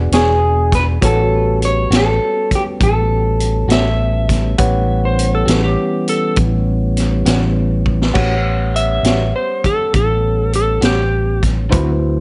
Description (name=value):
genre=slow blues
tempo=67 BPM (dotted quarters)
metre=12/8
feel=straight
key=A mixolydian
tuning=A4 = 440 Hz
part: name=tine electric piano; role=accompaniment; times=0.0-12.2 s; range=E4 to C#6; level=-27 LUFS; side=equal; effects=none
part: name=mellow tonewheel organ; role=sustained chords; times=0.0-12.2 s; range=E3 to G#4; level=-26 LUFS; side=equal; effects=slow rotary speaker
part: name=fingered electric bass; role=bass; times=0.0-12.2 s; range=E1 to D2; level=-19 LUFS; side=equal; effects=none
part: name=electric guitar through a small old amp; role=melody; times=0.1-7.5 s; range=G4 to C#5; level=-20 LUFS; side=equal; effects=none
part: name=electric guitar through a small old amp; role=accompaniment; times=0.1-11.9 s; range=A2 to C#5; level=-26 LUFS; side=equal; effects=tremolo
part: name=vintage drum kit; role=drums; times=0.1-11.9 s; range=crash cymbal, hi-hat, kick drum, snare drum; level=-21 LUFS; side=equal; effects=none
part: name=electric slide guitar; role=second line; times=3.7-11.4 s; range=G4 to E5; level=-21 LUFS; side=equal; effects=none
room=light reverb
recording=nothing above 11.0 kHz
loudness=-15 LUFS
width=mono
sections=0.0-8.2 A section; 8.2-12.2 B section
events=drum fill 7.9; electric slide guitar solo 8.2-12.2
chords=0.0 E13; 1.0 A13